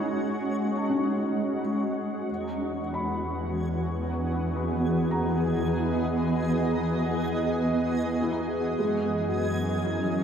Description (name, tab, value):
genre	ambient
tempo	55 BPM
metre	3/4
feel	straight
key	unclear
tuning	A4 = 442 Hz
part	shimmering ambient pad	sustained chords	0.0-10.2 s	E3 to D#5	-26 LUFS	equal	chorus, built-in reverb
part	felt-muted upright piano	arpeggios	0.0-10.2 s	G#3 to B5	-34 LUFS	equal	diffuse ambient delay
part	backwards swelling texture	texture	0.0-10.2 s	G#6	-46 LUFS	right 1 dB	built-in reverb
part	bright studio double bass section	bass	2.3-10.2 s	E2 to F#2	-33 LUFS	equal	none
room	wet lush hall reverb, RT60 2.7 s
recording	dark, warm production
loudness	-25 LUFS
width	side -8 dB against mid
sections	0.0-2.3 A section; 2.3-10.2 B section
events	fade-in on synth texture 2.3-10.2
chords	0.0 F#sus2; 2.3 Emaj7; 8.8 F#13